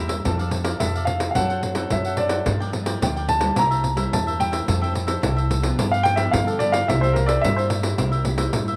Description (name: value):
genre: samba and choro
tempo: 109 BPM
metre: 4/4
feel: straight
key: F major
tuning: A4 = 442 Hz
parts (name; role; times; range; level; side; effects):
- cavaquinho; accompaniment; 0.0-8.8 s; D4 to G5; -34 LUFS; equal; none
- nylon-string guitar; accompaniment; 0.0-8.8 s; G2 to A4; -33 LUFS; equal; none
- upright bass; bass; 0.0-8.8 s; C2 to A2; -27 LUFS; equal; none
- pandeiro; percussion; 0.1-8.8 s; none; -28 LUFS; equal; none
- clear grand piano; melody; 0.8-7.7 s; A4 to Bb5; -26 LUFS; equal; tape echo
room: light reverb, small room ambience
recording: none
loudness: -22 LUFS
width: mono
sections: 0.3-8.8 A section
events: grand piano solo 0.3-8.8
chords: 0.3 F6; 1.4 D7/F#; 2.5 Gm7; 3.6 C7; 4.7 Fmaj7; 5.8 G7; 6.9 C7